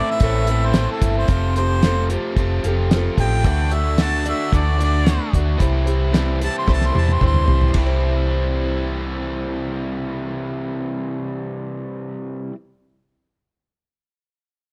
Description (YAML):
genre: folk rock and heartland rock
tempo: 111 BPM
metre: 4/4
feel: straight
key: C major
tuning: A4 = 442 Hz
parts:
  - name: warm harmonica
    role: second line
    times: 0.0-7.8 s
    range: A4 to C6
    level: -27 LUFS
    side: equal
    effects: none
  - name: picked acoustic archtop guitar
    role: accompaniment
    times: 0.0-12.6 s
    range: A2 to D5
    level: -29 LUFS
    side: equal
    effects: none
  - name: overdriven electric guitar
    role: riff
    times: 0.0-12.6 s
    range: F2 to F#4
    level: -28 LUFS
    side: equal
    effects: none
  - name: hollow-body short-scale fingered electric bass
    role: bass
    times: 0.2-12.5 s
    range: F1 to E2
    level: -22 LUFS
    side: equal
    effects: none
  - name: damped 70s drum kit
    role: drums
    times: 0.2-7.9 s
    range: hi-hat, kick drum, ride cymbal, snare drum, toms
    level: -22 LUFS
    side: equal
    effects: none
room: little or no reverb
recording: dark, warm production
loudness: -20 LUFS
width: mono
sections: 0.0-7.8 A section; 7.8-12.1 B section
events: harmonica solo 0.0-7.8; drum fill 6.7-7.8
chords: 0.0 Am; 1.3 Fadd9; 3.4 Dadd9; 5.6 C6